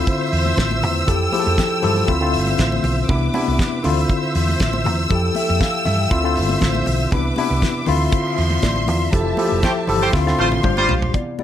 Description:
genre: disco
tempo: 119 BPM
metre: 4/4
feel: straight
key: unclear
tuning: A4 = 441 Hz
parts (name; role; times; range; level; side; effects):
- mellow tine electric piano; accompaniment; 0.0-11.4 s; C3 to F5; -21 LUFS; left 3 dB; medium stereo tremolo
- clear studio string section; sustained chords; 0.0-11.1 s; F3 to E6; -24 LUFS; right 1 dB; none
- damped 70s drum kit; drums; 0.1-11.3 s; hi-hat, kick drum, snare drum, toms; -23 LUFS; right 1 dB; none
- congas; percussion; 0.1-11.4 s; none; -30 LUFS; left 3 dB; none
- hollow-body short-scale fingered electric bass; bass; 0.3-11.1 s; F1 to G2; -21 LUFS; right 1 dB; none
- clear horn section; stabs; 9.6-10.9 s; G3 to C5; -21 LUFS; right 2 dB; none
room: light reverb, studio ambience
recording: none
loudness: -16 LUFS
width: side -10 dB against mid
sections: 0.0-11.1 A section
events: band accent 9.1-11.1; drum fill 10.1-11.1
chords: 0.0 Dm9; 1.1 Fmaj9; 2.1 Dm9; 3.1 Cmaj9; 3.8 Dm9; 5.1 Fmaj9; 6.1 Dm9; 7.1 Cmaj9; 7.9 Dm9; 9.1 Fmaj9; 10.1 Dm9; 10.6 G7sus4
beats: 0.07 0.58 | 1.08 1.58 2.09 2.59 | 3.09 3.60 4.10 4.60 | 5.11 5.61 6.11 6.62 | 7.12 7.62 8.12 8.63 | 9.13 9.63 10.14 10.64 | 11.15

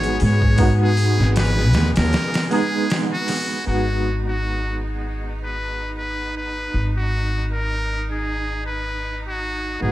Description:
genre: trip hop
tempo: 78 BPM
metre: 4/4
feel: swing 56% on 16ths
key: G# minor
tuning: A4 = 439 Hz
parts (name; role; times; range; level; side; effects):
- trumpet with metal mute; melody; 0.0-9.9 s; F#4 to C#5; -26 LUFS; equal; dub echo
- clear upright piano; accompaniment; 0.0-9.9 s; G#3 to G#4; -25 LUFS; right 1 dB; tremolo, vintage 12-bit sampler grit
- bright studio string section; sustained chords; 0.0-9.9 s; B3 to G#4; -32 LUFS; right 1 dB; none
- upright bass; bass; 0.0-9.9 s; G#1 to G#2; -21 LUFS; equal; tube saturation
- trip hop sampler-style drum kit; drums; 0.0-3.5 s; hi-hat, kick drum, snare drum; -23 LUFS; equal; studio reverb
room: small room ambience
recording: none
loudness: -19 LUFS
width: side -15 dB against mid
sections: 0.0-3.7 A section; 3.7-9.9 B section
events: break 2.1-3.7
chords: 0.0 G#m7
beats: | 0.59 1.36 2.13 2.90 | 3.67 4.44 5.21 5.97 | 6.74 7.51 8.28 9.05 | 9.82

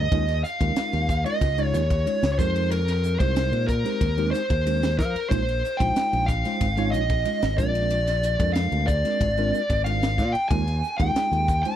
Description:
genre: electric jazz fusion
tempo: 92 BPM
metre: 4/4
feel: straight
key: Bb dorian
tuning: A4 = 441 Hz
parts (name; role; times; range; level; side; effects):
- smooth overdriven lead guitar; melody; 0.0-11.8 s; Bb4 to A5; -25 LUFS; equal; none
- tine electric piano; accompaniment; 0.0-11.8 s; Ab3 to Eb5; -29 LUFS; right 1 dB; medium stereo tremolo, analog chorus
- modern bright fingered electric bass; bass; 0.0-11.6 s; Ab1 to F3; -24 LUFS; equal; none
- crisp fusion drum kit; drums; 0.1-11.8 s; hi-hat, kick drum, ride cymbal, snare drum; -28 LUFS; equal; none
room: little or no reverb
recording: none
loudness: -21 LUFS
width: side -10 dB against mid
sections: 0.1-11.8 A section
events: none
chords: 0.1 Eb7sus4; 2.4 Fm11; 5.3 Bbm11; 7.6 Bb7; 10.5 Eb7sus4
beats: | 0.12 0.77 1.42 2.06 | 2.71 3.36 4.01 4.66 | 5.31 5.96 6.61 7.26 | 7.91 8.56 9.21 9.86 | 10.51 11.16

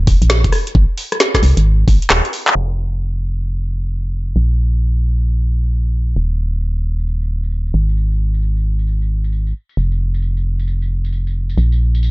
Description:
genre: UK garage, two-step garage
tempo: 133 BPM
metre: 4/4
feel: swing 64% on 16ths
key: unclear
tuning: A4 = 440 Hz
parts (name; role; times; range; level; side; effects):
- organ-like FM bass; bass; 0.0-12.1 s; Eb1 to C2; -15 LUFS; equal; none
- electronic kick drum; drums; 0.1-2.0 s; none; -14 LUFS; equal; none
- garage drum kit; drums; 0.1-12.1 s; handclaps, hi-hat, rim click, snare drum, tambourine; -16 LUFS; equal; low-pass filter on hats, low-pass filter on snare, low-pass filter on perc, low-pass filter on room
room: little or no reverb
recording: low-pass filter, nothing above 7.8 kHz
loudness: -15 LUFS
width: side -20 dB against mid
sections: 0.0-2.6 A section; 2.6-12.1 B section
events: kick drops out 2.1-2.6; drum fill 2.1-2.6; band accent 2.4; filter sweep on drum 2.6-12.1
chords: none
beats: 0.30 | 0.75 1.20 1.65 2.10 | 2.56 3.01 3.46 3.91 | 4.36 4.81 5.26 5.71 | 6.16 6.62 7.07 7.52 | 7.97 8.42 8.87 9.32 | 9.77 10.22 10.68 11.13 | 11.58 12.03

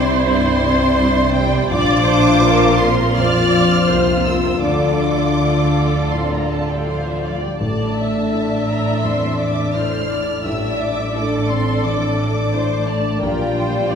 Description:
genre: cinematic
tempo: 77-89 BPM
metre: 4/4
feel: rubato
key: unclear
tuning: A4 = 440 Hz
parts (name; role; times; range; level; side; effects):
- warm studio violin section; melody; 0.0-14.0 s; E5 to F6; -24 LUFS; left 1 dB; none
- dark studio violin section; second line; 0.0-14.0 s; D4 to D5; -22 LUFS; left 1 dB; none
- rich studio viola section; accompaniment; 0.0-14.0 s; A4 to E5; -24 LUFS; right 2 dB; none
- warm concert grand piano; accompaniment; 0.0-14.0 s; A1 to D5; -24 LUFS; left 1 dB; none
- mellow French horn section; sustained chords; 0.0-14.0 s; E3 to F4; -22 LUFS; left 3 dB; none
- concert harp; arpeggios; 0.0-14.0 s; A2 to E5; -26 LUFS; left 4 dB; none
- warm studio cello section; bass; 0.0-14.0 s; A2 to D3; -26 LUFS; right 3 dB; none
- warm studio double bass section; bass; 0.0-14.0 s; A1 to D2; -24 LUFS; right 3 dB; none
room: wet recital hall reverb, RT60 1.4 s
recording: recorded in a church or concert hall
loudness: -15 LUFS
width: side -7 dB against mid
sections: 0.0-14.0 A section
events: none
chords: 0.0 Cadd9; 1.7 Bbsus2; 4.6 Dm; 7.6 Asus4; 13.2 Gm7/Bb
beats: 0.28 0.98 | 1.70 2.41 3.17 3.89 | 4.61 5.37 6.11 6.86 | 7.60 8.32 9.04 9.75 | 10.45 11.14 11.84 12.53 | 13.21 13.90

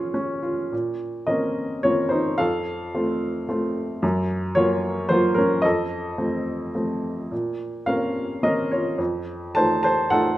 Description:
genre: classical, lyrical solo piano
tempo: 108 BPM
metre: 3/4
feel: rubato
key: Bb harmonic minor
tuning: A4 = 441 Hz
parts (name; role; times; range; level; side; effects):
- warm upright piano; solo; 0.0-10.4 s; F2 to A5; -21 LUFS; equal; none
room: moderate recital hall reverb, RT60 1.6 s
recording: none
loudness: -21 LUFS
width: side -15 dB against mid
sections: 0.7-10.4 A section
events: none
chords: 0.0 Bbm7; 0.7 Bbmadd9; 2.4 F; 4.0 Gbmaj7; 5.6 F; 7.3 Bbmadd9; 9.0 F7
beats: 0.14 | 0.72 1.29 1.84 | 2.40 2.95 3.50 | 4.03 4.56 5.10 | 5.64 6.19 6.75 | 7.32 7.88 8.44 | 8.99 9.55 10.11

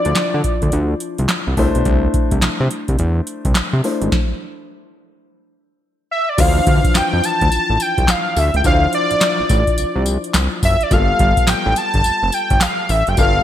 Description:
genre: R&B, new jack swing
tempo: 106 BPM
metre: 4/4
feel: swing 63% on 16ths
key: D dorian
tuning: A4 = 442 Hz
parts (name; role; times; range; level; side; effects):
- wide unison lead; melody; 0.0-0.7, 6.1-13.4 s; D5 to A5; -18 LUFS; equal; none
- warm concert grand piano; accompaniment; 0.0-13.4 s; E3 to C5; -23 LUFS; left 4 dB; none
- fat analog bass; bass; 0.1-13.4 s; F1 to D3; -18 LUFS; equal; none
- booming analog drum machine; drums; 0.1-13.4 s; crash cymbal, handclaps, hi-hat, kick drum, snare drum, tambourine; -18 LUFS; equal; gated reverb
room: light reverb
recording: bright 1980s-style digital production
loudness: -14 LUFS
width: side -11 dB against mid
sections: 0.0-6.4 A section; 6.4-13.4 B section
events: stop 4.1-6.4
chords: 0.0 Dm9; 1.6 C69; 4.1 N.C.; 6.4 Dm9; 10.9 G9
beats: 0.16 0.72 1.29 | 1.86 2.42 2.99 3.55 | 4.12 4.69 5.25 5.82 | 6.38 6.95 7.52 8.08 | 8.65 9.21 9.78 10.35 | 10.91 11.48 12.04 12.61 | 13.18

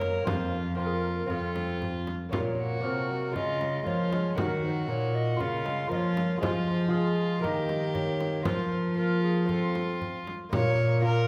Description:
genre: classical, renaissance-style consort dance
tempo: 117 BPM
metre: 4/4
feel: straight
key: Bb minor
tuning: A4 = 440 Hz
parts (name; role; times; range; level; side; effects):
- mellow hollow alto recorder; melody; 0.0-11.3 s; F4 to F5; -37 LUFS; equal; none
- warm violin; second line; 0.0-11.3 s; F4 to Db5; -37 LUFS; equal; none
- lute; accompaniment; 0.0-11.3 s; F2 to F5; -37 LUFS; equal; none
- mellow bassoon; accompaniment; 0.0-11.3 s; F3 to C4; -39 LUFS; equal; none
- rich cello; bass; 0.0-11.3 s; F2 to F3; -32 LUFS; equal; none
- frame drum; percussion; 0.0-10.8 s; none; -38 LUFS; equal; none
room: wet recital hall reverb, RT60 1.4 s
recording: none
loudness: -29 LUFS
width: mono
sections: 0.0-10.5 A section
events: none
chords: 0.3 Fsus4; 1.3 F; 2.3 Bbm; 3.4 Db; 4.4 Ebm; 5.4 Bbm/Db; 6.4 Fm; 7.4 Eb; 8.5 Fsus4; 9.5 F; 10.5 Bbm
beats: | 0.27 0.78 1.30 1.81 | 2.33 2.84 3.35 3.87 | 4.38 4.89 5.40 5.91 | 6.42 6.93 7.43 7.95 | 8.46 8.97 9.49 10.01 | 10.53 11.04

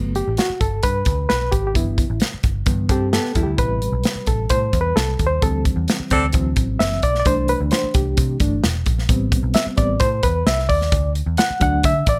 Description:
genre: uptempo 1960s-style soul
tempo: 131 BPM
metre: 4/4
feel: straight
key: G major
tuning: A4 = 438 Hz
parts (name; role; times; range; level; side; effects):
- barky reed electric piano; accompaniment; 0.0-12.2 s; B2 to F#5; -24 LUFS; equal; overdrive, fast tremolo
- vintage muted picked electric bass; bass; 0.0-12.2 s; E1 to D3; -25 LUFS; equal; none
- natural country drum kit; drums; 0.2-12.2 s; hi-hat, kick drum, snare drum; -23 LUFS; equal; none
- hollow-body jazz guitar; riff; 2.9-3.8 s; G3 to A4; -27 LUFS; equal; none
- bright saxophone section; second line; 6.1-6.3 s; C4 to A4; -22 LUFS; equal; none
room: light reverb, small room ambience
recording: none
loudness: -19 LUFS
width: mono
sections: 0.0-12.2 A section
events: reed electric piano solo 0.0-12.2; band accent 5.4-7.3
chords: 0.0 Gmaj7; 1.8 G69; 3.6 Am7; 5.4 D7sus4; 6.3 D7; 7.3 C6; 9.1 Am7; 10.9 D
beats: 0.38 0.84 1.30 | 1.75 2.21 2.67 3.13 | 3.59 4.05 4.51 4.96 | 5.42 5.88 6.34 6.80 | 7.26 7.72 8.18 8.64 | 9.10 9.55 10.01 10.47 | 10.93 11.39 11.85

